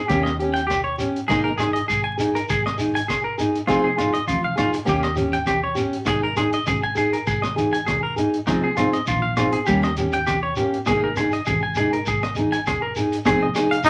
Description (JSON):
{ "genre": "highlife guitar band", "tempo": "100 BPM", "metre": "4/4", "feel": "straight", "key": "unclear", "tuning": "A4 = 440 Hz", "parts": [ { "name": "semi-hollow electric guitar", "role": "arpeggios", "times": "0.0-13.9 s", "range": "Eb4 to Ab5", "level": "-25 LUFS", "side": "equal", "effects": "none" }, { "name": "fingerpicked steel-string acoustic guitar", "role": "accompaniment", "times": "0.1-13.8 s", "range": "F3 to Ab4", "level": "-25 LUFS", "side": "equal", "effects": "none" }, { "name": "hollow-body short-scale fingered electric bass", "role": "bass", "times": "0.1-13.9 s", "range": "F1 to Eb2", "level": "-32 LUFS", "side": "equal", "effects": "none" }, { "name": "crunchy breakbeat drum kit", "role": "drums", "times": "0.1-13.9 s", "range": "hi-hat, kick drum, rim click", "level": "-33 LUFS", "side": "equal", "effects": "none" }, { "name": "shekere", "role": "percussion", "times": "0.1-13.9 s", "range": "none", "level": "-34 LUFS", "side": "equal", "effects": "none" }, { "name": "congas", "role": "percussion", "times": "3.7-13.9 s", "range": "none", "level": "-35 LUFS", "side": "equal", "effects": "none" }, { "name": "brilliant trumpet", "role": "melody", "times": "13.9 s", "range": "Eb4", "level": "-14 LUFS", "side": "equal", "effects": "none" } ], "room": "wet club reverb, RT60 0.5 s", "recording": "vinyl crackle", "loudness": "-22 LUFS", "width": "mono", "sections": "0.0-13.3 A section", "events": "none", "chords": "0.1 Eb7; 1.3 Absus2; 3.7 Fm7; 4.9 Eb7; 6.1 Absus2; 8.5 Fm7; 9.7 Eb7; 10.9 Absus2; 13.3 Fm7" }